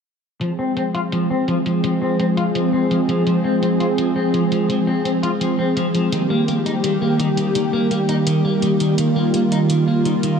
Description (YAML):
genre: synthwave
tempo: 84 BPM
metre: 4/4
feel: straight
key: F minor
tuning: A4 = 439 Hz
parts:
  - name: warm analog pad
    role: sustained chords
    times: 0.4-10.4 s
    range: Eb3 to Ab4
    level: -18 LUFS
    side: equal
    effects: chorus
  - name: clean electric guitar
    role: riff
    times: 0.4-10.4 s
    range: Eb3 to F4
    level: -21 LUFS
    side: left 1 dB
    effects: lush chorus, low-pass filter, diffuse ambient delay
  - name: electronic hi-hat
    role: drums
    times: 0.4-10.4 s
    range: none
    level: -33 LUFS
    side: equal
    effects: low-pass filter on hats
room: wet huge ambient reverb, RT60 8.3 s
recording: dreamy mix soaked in reverb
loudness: -16 LUFS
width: side -6 dB against mid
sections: 0.4-10.4 A section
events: filter sweep on clean electric guitar 0.4-10.4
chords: 0.4 Fm; 6.1 Eb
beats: | 0.41 1.13 1.84 2.55 | 3.27 3.98 4.70 5.41 | 6.13 6.84 7.55 8.27 | 8.98 9.70